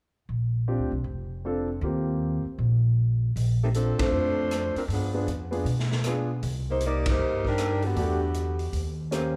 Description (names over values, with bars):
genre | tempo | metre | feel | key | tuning
jazz, big band swing | 156 BPM | 4/4 | swing 64% on 8ths | Bb major | A4 = 440 Hz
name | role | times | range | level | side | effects
upright bass | bass | 0.3-9.4 s | F1 to B2 | -29 LUFS | equal | none
warm concert grand piano | accompaniment | 0.7-9.4 s | A3 to C5 | -33 LUFS | equal | none
swinging big-band drum kit | drums | 3.4-9.2 s | hi-hat, kick drum, ride cymbal, rim click, snare drum | -36 LUFS | equal | none
mellow saxophone section | melody | 3.6-9.0 s | D3 to D5 | -30 LUFS | equal | none
room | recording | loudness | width
wet recital hall reverb, RT60 1.5 s | recorded in a church or concert hall | -27 LUFS | mono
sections
0.3-3.4 A section; 3.4-9.4 B section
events
band accent 3.9, 7.0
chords
0.3 Bb6; 1.8 Eb6; 3.4 Bbmaj9; 4.9 G7b9; 6.4 Cm9; 8.0 Em11; 8.7 Eb7